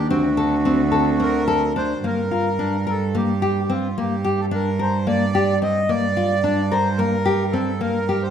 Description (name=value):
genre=contemporary instrumental, chamber music in an uneven meter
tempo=218 BPM (eighths)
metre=7/8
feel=straight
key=G minor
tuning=A4 = 440 Hz
part: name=accordion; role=melody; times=0.0-8.3 s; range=F4 to Eb5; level=-24 LUFS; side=right 2 dB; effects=none
part: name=vibraphone with soft mallets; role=second line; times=0.0-1.7 s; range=D4 to G4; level=-22 LUFS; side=left 1 dB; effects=none
part: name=warbly tape-like pad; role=sustained chords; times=0.0-2.0 s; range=D3 to F#4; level=-28 LUFS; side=right 3 dB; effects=chorus, built-in reverb
part: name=warm cello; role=bass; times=0.0-8.3 s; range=D2 to G2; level=-23 LUFS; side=right 4 dB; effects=none
part: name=worn celesta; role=texture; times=0.0-7.9 s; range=A5 to C6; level=-33 LUFS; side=left 7 dB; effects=none
part: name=nylon-string guitar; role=arpeggios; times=0.1-8.3 s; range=Bb3 to Bb4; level=-22 LUFS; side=left 4 dB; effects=none
room=moderate scoring stage reverb, RT60 1.9 s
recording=minimal, uncompressed stereo recording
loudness=-18 LUFS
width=side -8 dB against mid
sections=0.0-2.0 A section; 2.0-8.3 B section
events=none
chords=0.1 D7; 2.0 Gm; 4.0 Gmadd9; 5.9 Gm